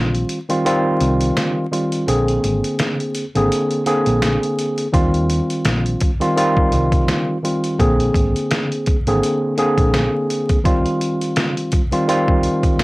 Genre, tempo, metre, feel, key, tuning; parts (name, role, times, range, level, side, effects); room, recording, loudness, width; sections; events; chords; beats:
hip hop, boom-bap hip-hop; 84 BPM; 4/4; swing 57% on 16ths; Eb major; A4 = 442 Hz
tine electric piano; accompaniment; 0.0-12.8 s; D3 to Ab4; -18 LUFS; equal; medium stereo tremolo, cassette tape
hollow-body short-scale fingered electric bass; bass; 0.0-10.1 s; Ab1 to Eb2; -20 LUFS; equal
trip hop sampler-style drum kit; drums; 0.1-12.8 s; hi-hat, kick drum, snare drum; -20 LUFS; equal
light reverb; home recording on cassette, vinyl crackle; -15 LUFS; side -22 dB against mid
0.0-12.8 A section
break 0.0-4.9
0.0 Eb69; 2.1 Bb9; 4.9 Eb69; 7.8 Bb9; 10.6 Eb69
0.65 1.36 | 2.08 2.79 3.51 4.22 | 4.93 5.65 6.36 7.08 | 7.79 8.51 9.22 9.93 | 10.65 11.36 12.08 12.79